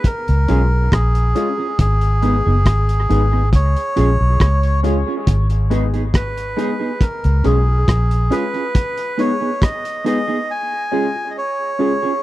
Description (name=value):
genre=dub reggae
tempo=69 BPM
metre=4/4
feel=straight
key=unclear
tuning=A4 = 440 Hz
part: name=melodica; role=melody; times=0.0-12.2 s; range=G#4 to G#5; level=-22 LUFS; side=equal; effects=dub echo
part: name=cloth-damped thuddy drum kit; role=drums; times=0.0-10.3 s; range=hi-hat, kick drum, rim click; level=-16 LUFS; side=equal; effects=none
part: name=vintage muted fingered electric bass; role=bass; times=0.3-8.3 s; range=F#1 to C#2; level=-15 LUFS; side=equal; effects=none
part: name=mellow electric guitar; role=accompaniment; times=0.5-12.1 s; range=B3 to G#4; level=-24 LUFS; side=right 4 dB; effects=lush chorus, dub echo
part: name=warm upright piano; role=stabs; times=0.5-11.9 s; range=G#3 to G#4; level=-25 LUFS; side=left 6 dB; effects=dub echo
room=little or no reverb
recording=dry, close 1970s-style studio recording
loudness=-15 LUFS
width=side -16 dB against mid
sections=0.0-12.2 A section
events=break 8.7-12.2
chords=0.0 C#; 1.8 G#m; 3.5 C#; 5.3 G#m; 7.0 C#; 8.7 G#m; 10.5 C#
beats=0.05 0.92 | 1.79 2.66 3.53 4.40 | 5.27 6.14 7.01 7.88 | 8.75 9.62 10.49 11.36